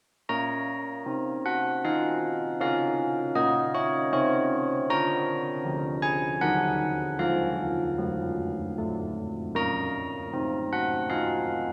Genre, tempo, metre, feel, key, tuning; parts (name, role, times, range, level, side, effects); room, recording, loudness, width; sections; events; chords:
classical, tune for church bells; 78 BPM; 3/4; straight; Bb minor; A4 = 440 Hz
carillon bells; solo; 0.3-11.7 s; D3 to Bb5; -28 LUFS; equal
wet church reverb, RT60 3.2 s; heard from further back in the room; -28 LUFS; mono
0.3-11.7 A section
0.3 Bbm; 4.9 Bb/D; 6.4 Ebm; 7.2 F; 9.6 Bb5